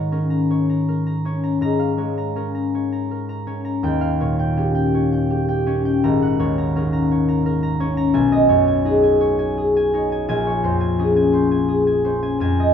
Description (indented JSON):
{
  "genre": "classical, solo harp piece",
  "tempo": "55 BPM (dotted quarters)",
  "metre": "6/8",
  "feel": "uneven beats, rubato",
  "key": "unclear",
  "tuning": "A4 = 440 Hz",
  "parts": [
    { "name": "concert harp", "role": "solo", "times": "0.0-12.7 s", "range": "Ab1 to Bb5", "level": "-17 LUFS", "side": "left 1 dB", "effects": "none" }
  ],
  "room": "little or no reverb",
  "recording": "close, detailed microphones",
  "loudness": "-17 LUFS",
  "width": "side -8 dB against mid",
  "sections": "0.0-12.7 A section",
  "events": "none",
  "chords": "0.0 Ab11; 1.6 Db6/Ab; 3.8 Eb9; 6.0 Ab9sus4; 8.1 Cb69; 10.3 Bbm9"
}